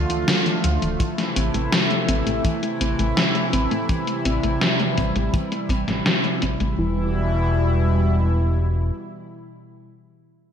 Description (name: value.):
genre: synthwave.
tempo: 83 BPM.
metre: 4/4.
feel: straight.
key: E phrygian.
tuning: A4 = 441 Hz.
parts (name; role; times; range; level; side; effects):
chorused pulse-width pad; sustained chords; 0.0-9.9 s; B2 to F4; -24 LUFS; equal; none.
soft round pluck; arpeggios; 0.0-7.1 s; D3 to C4; -28 LUFS; left 2 dB; chorus, digital delay.
chorused synth bass; bass; 0.0-8.9 s; D1 to A2; -22 LUFS; equal; none.
gated 80s digital drum machine; drums; 0.1-6.7 s; hi-hat, snare drum; -24 LUFS; left 1 dB; gated reverb, gated reverb snare, overdrive, low-pass filter on hats, low-pass filter on snare, low-pass filter on room.
kick drum; drums; 1.0-5.8 s; none; -24 LUFS; equal; none.
room: moderate plate reverb, RT60 2.5 s.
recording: bright 1980s-style digital production.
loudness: -19 LUFS.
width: side -8 dB against mid.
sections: 0.0-6.8 A section; 6.8-9.7 B section.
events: filter sweep on synth arpeggio sound 0.0-6.8.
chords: 0.0 Dmadd9; 1.0 Am; 6.8 Em.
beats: 0.28 | 1.00 1.72 2.45 3.17 | 3.89 4.62 5.34 6.06 | 6.78 7.51 8.23 8.95.